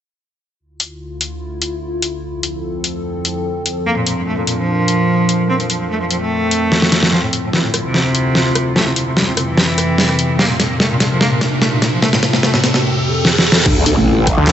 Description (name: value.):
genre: heavy wobble dubstep.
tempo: 147 BPM.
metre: 4/4.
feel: half-time.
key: D minor.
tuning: A4 = 441 Hz.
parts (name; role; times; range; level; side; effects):
evolving wavetable pad; sustained chords; 1.0-14.5 s; D2 to Bb4; -20 LUFS; equal; chorus, built-in reverb, sidechain pumping.
dubstep drum kit; drums; 0.8-14.5 s; crash cymbal, handclaps, hi-hat, rim click, snare drum; -15 LUFS; equal; overdrive.
clear cello; melody; 3.9-12.8 s; A2 to C4; -18 LUFS; equal; digital delay.
riser and impact; sound effects; 9.2-14.5 s; none; -22 LUFS; right 1 dB; none.
growl bass; bass; 13.7-14.4 s; A1 to D2; -14 LUFS; equal; chorus, overdrive.
electronic kick drum; drums; 13.7-14.4 s; none; -17 LUFS; equal; overdrive.
snarling distorted saw bass; bass; 14.4-14.5 s; D2; -11 LUFS; equal; distortion, overdrive.
room: moderate lush hall reverb, RT60 1.8 s.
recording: nothing above 8.0 kHz.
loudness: -13 LUFS.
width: side -10 dB against mid.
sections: 0.6-7.1 A section; 7.1-13.7 B section.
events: filter sweep on ambient pad 0.6-7.1; drum fill 6.7-7.1, 7.1-12.8, 13.2-13.7; build-up 7.1-13.7; riser 9.2-13.7; impact 13.7-14.5.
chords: 0.6 Dmadd9; 2.2 F; 3.9 Bb; 5.5 F; 7.1 Dmadd9; 8.8 F; 10.4 Bb; 12.0 F; 13.7 Dm.